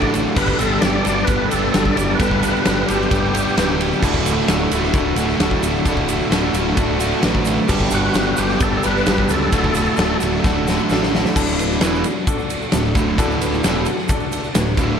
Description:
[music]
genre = classic rock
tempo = 131 BPM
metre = 4/4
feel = straight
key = D major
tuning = A4 = 440 Hz
[part]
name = overdriven tonewheel organ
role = melody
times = 0.0-3.8, 7.9-10.2 s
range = F#4 to D5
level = -23 LUFS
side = equal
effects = chorus vibrato, fast rotary speaker, slapback echo
[part]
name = bright upright piano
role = accompaniment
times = 0.0-14.9 s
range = B3 to B4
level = -28 LUFS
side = left 4 dB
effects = slapback echo
[part]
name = string machine, full ensemble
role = sustained chords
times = 0.0-15.0 s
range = G3 to A4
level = -31 LUFS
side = equal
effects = none
[part]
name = overdriven electric guitar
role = riff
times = 0.0-15.0 s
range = D2 to G4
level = -23 LUFS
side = right 8 dB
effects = none
[part]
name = sludgy distorted guitar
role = riff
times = 0.0-15.0 s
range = D2 to G4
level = -24 LUFS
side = left 8 dB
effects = overdrive, slapback echo
[part]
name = fuzz picked electric bass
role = bass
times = 0.0-15.0 s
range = D1 to C#2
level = -24 LUFS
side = equal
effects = overdrive
[part]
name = big rock drum kit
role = drums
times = 0.0-14.9 s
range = crash cymbal, kick drum, ride cymbal, snare drum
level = -20 LUFS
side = equal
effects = none
[part]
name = tube shaker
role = percussion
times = 0.2-14.9 s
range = none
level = -36 LUFS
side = right 12 dB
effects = none
[sound]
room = moderate lush hall reverb, RT60 2.0 s, studio reverb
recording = big arena sound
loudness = -15 LUFS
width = side -7 dB against mid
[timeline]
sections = 0.0-11.4 A section; 11.4-15.0 B section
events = drum fill 10.4-11.4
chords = 0.4 Gadd9; 4.0 D; 7.7 Gadd9; 9.5 D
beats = | 0.36 0.82 1.28 1.74 | 2.20 2.65 3.11 3.57 | 4.03 4.49 4.95 5.41 | 5.86 6.32 6.78 7.24 | 7.70 8.16 8.62 9.07 | 9.53 9.99 10.45 10.90 | 11.36 11.82 12.27 12.73 | 13.18 13.64 14.10 14.55

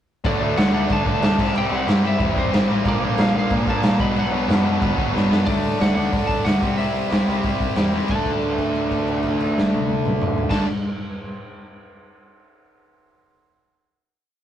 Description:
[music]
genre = punk rock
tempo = 184 BPM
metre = 4/4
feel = straight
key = D mixolydian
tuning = A4 = 440 Hz
[part]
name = distorted electric guitar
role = riff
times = 0.2-10.7 s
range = Bb2 to F#4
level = -26 LUFS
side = left 5 dB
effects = overdrive
[part]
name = growling picked electric bass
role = bass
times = 0.2-10.6 s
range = F#1 to D3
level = -30 LUFS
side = equal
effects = overdrive
[part]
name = raw garage drum kit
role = drums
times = 0.2-10.6 s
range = crash cymbal, hi-hat, kick drum, snare drum, toms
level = -21 LUFS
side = equal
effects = none
[part]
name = lightly driven lead guitar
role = melody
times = 0.3-10.6 s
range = C5 to B5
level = -28 LUFS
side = left 1 dB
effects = none
[part]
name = distorted electric guitar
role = riff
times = 0.3-10.7 s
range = Bb2 to D4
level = -25 LUFS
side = right 6 dB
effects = overdrive
[sound]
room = light reverb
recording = rough rehearsal-room recording, tube saturation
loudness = -18 LUFS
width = side -10 dB against mid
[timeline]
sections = 0.2-5.5 riff; 5.5-8.1 outro; 8.1-10.7 final chord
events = drum fill 5.2-5.5; held note 8.1-10.5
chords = 0.2 D; 1.4 C; 2.9 Bb; 4.0 Bm; 5.5 D; 6.6 C; 8.1 D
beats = | 0.25 0.57 0.90 1.22 | 1.55 1.88 2.20 2.53 | 2.86 3.18 3.51 3.84 | 4.17 4.50 4.82 5.15 | 5.48 5.81 6.13 6.46 | 6.79 7.12 7.44 7.77 | 8.10 8.42 8.75 9.08 | 9.40 9.73 10.05 10.38

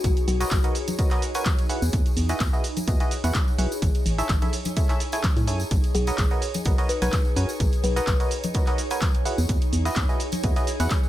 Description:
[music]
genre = piano house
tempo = 127 BPM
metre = 4/4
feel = swing 54% on 16ths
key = B major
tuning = A4 = 439 Hz
[part]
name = kalimba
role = melody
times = 0.0-0.8, 5.9-8.0 s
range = F#4 to B4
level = -32 LUFS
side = left 4 dB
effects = dub echo
[part]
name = organ-like FM bass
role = bass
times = 0.0-10.9 s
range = A1 to A2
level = -24 LUFS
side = equal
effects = tube saturation, sidechain pumping
[part]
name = electronic kick drum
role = drums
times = 0.0-11.0 s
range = none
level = -23 LUFS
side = equal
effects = none
[part]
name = punchy analog drum machine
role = drums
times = 0.0-11.0 s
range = handclaps, hi-hat, shaker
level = -32 LUFS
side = right 1 dB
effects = none
[part]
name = tambourine and congas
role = percussion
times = 0.0-11.1 s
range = none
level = -35 LUFS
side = left 3 dB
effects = none
[part]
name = ethereal airy pad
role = texture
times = 0.0-11.1 s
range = D#4 to C#5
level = -34 LUFS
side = right 1 dB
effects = ensemble chorus, built-in reverb, phaser, sidechain pumping
[part]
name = barking FM electric piano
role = riff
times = 0.4-10.9 s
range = E4 to G#5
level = -30 LUFS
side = right 1 dB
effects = chorus, sidechain pumping, dub echo
[sound]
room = little or no reverb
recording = none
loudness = -21 LUFS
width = side -14 dB against mid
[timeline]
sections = 0.0-11.1 A section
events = none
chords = 0.0 Bmaj9; 1.7 Emaj9; 3.8 Amaj7; 5.7 Bmaj9; 9.3 Emaj9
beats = | 0.04 0.51 0.99 1.46 | 1.93 2.40 2.88 3.35 | 3.82 4.29 4.77 5.24 | 5.71 6.18 6.66 7.13 | 7.60 8.07 8.54 9.02 | 9.49 9.96 10.44 10.91

